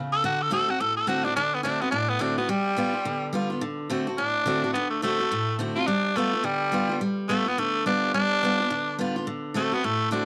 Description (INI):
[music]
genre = rock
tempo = 213 BPM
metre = 4/4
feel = swing 61% on 8ths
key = D mixolydian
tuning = A4 = 443 Hz
[part]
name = picked steel-string acoustic guitar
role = accompaniment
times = 0.0-10.3 s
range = A2 to F#4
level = -30 LUFS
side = equal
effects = none
[part]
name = raspy tenor saxophone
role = melody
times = 0.1-10.3 s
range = G3 to A4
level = -27 LUFS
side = equal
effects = none
[sound]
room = light reverb, small room ambience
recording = none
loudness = -26 LUFS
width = mono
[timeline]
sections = 0.0-1.4 A section; 1.4-10.3 B section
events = tenor saxophone solo 1.4-10.3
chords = 0.2 D7; 2.5 G7; 3.6 D7; 5.9 G7; 9.3 D7